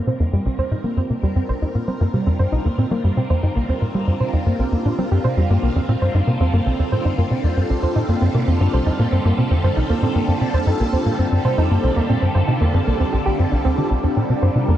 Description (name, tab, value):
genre	ambient, sequencer-driven space music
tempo	116 BPM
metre	4/4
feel	straight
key	unclear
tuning	A4 = 440 Hz
part	phased string machine	sustained chords	0.0-14.8 s	D3 to Bb4	-25 LUFS	left 1 dB	ensemble chorus, phaser
part	soft round pluck	arpeggios	0.0-14.8 s	G3 to C5	-23 LUFS	right 2 dB	chorus, auto-pan, cassette tape, analog delay
part	tight sequencer bass	riff	0.1-14.8 s	C2 to G3	-18 LUFS	equal	wide subtle chorus, analog delay
room	moderate huge ambient reverb, RT60 9.3 s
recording	worn, warbling old tape, cassette tape, warbly pitch drift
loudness	-17 LUFS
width	side -12 dB against mid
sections	0.0-14.8 A section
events	fade-in on string machine 0.0-14.8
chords	0.0 Cm7